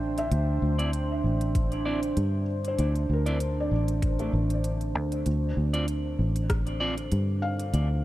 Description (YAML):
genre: ambient dub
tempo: 97 BPM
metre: 4/4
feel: swing 55% on 16ths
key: unclear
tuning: A4 = 441 Hz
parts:
  - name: deep dark ambient pad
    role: sustained chords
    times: 0.0-8.0 s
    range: D4 to A5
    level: -32 LUFS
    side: right 2 dB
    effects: chorus, built-in reverb
  - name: felt-muted upright piano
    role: arpeggios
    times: 0.0-8.0 s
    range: A3 to F5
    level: -37 LUFS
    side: left 2 dB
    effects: low-pass filter, dub echo
  - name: fingered electric bass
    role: bass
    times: 0.0-8.0 s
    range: A1 to G2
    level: -26 LUFS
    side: equal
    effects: none
  - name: organic electronic drum kit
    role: drums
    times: 0.2-7.9 s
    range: hi-hat, rim click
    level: -38 LUFS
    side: equal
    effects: overdrive, studio reverb
  - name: electric guitar at the edge of break-up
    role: stabs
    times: 0.8-6.9 s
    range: C4 to D5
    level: -36 LUFS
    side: right 1 dB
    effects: low-pass filter, dub echo
  - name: electronic kick drum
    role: drums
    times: 1.6-6.6 s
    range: none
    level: -27 LUFS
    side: equal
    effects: studio reverb
room: light reverb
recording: none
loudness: -24 LUFS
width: side -15 dB against mid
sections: 0.0-8.0 A section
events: filter sweep on felt piano 0.0-8.0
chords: 0.0 Cadd9; 5.3 Dm7